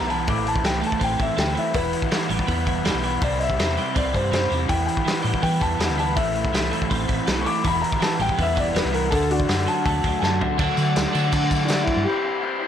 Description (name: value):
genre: indie rock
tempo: 163 BPM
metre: 4/4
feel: straight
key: E minor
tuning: A4 = 440 Hz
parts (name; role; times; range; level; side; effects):
- clear upright piano; melody; 0.0-12.7 s; D4 to D6; -26 LUFS; left 2 dB; tape echo
- raw garage guitar; riff; 0.0-12.7 s; E2 to F#4; -27 LUFS; left 8 dB; overdrive
- twelve-string electric guitar; riff; 0.0-12.1 s; A2 to E4; -27 LUFS; right 10 dB; analog chorus, tape echo
- hollow-body short-scale fingered electric bass; bass; 0.0-12.0 s; E1 to E3; -26 LUFS; equal; tube saturation
- loose indie drum kit; drums; 0.1-12.0 s; crash cymbal, hi-hat, kick drum, snare drum, toms; -25 LUFS; equal; soft clipping on kick
- combo organ; sustained chords; 10.6-12.7 s; E4 to D6; -32 LUFS; right 2 dB; wide subtle chorus
- tambourine; percussion; 10.8-11.8 s; none; -37 LUFS; left 12 dB; none
room: light reverb, small room ambience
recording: blown-out, overdriven recording, overdrive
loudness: -19 LUFS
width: side -9 dB against mid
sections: 0.0-10.6 A section; 10.6-12.1 B section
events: upright piano solo 0.0-10.6; drum fill 10.2-10.6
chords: 0.3 Am; 1.8 Em; 3.2 C; 4.7 Em; 6.2 Am; 7.6 Em; 9.1 D; 12.1 C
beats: | 0.28 0.65 1.02 1.38 | 1.75 2.12 2.49 2.86 | 3.22 3.59 3.96 4.33 | 4.70 5.07 5.43 5.80 | 6.17 6.54 6.91 7.28 | 7.64 8.01 8.38 8.75 | 9.12 9.48 9.85 10.22 | 10.59 10.95 11.32 11.69 | 12.05 12.42